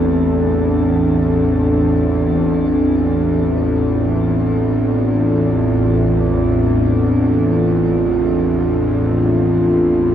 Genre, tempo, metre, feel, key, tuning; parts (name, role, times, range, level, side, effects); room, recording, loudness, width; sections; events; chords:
dark ambient drone; free time; A4 = 440 Hz
dark analog pad; sustained chords; 0.0-10.1 s; A2 to A4; -15 LUFS; equal; chorus, shimmer reverb
bowed-like drone; drone; 0.0-10.1 s; A1 to E2; -18 LUFS; equal; built-in reverb
wet huge ambient reverb, RT60 8.7 s; nothing above 10.6 kHz; -13 LUFS; side -10 dB against mid
0.0-10.1 A section
0.1 F/A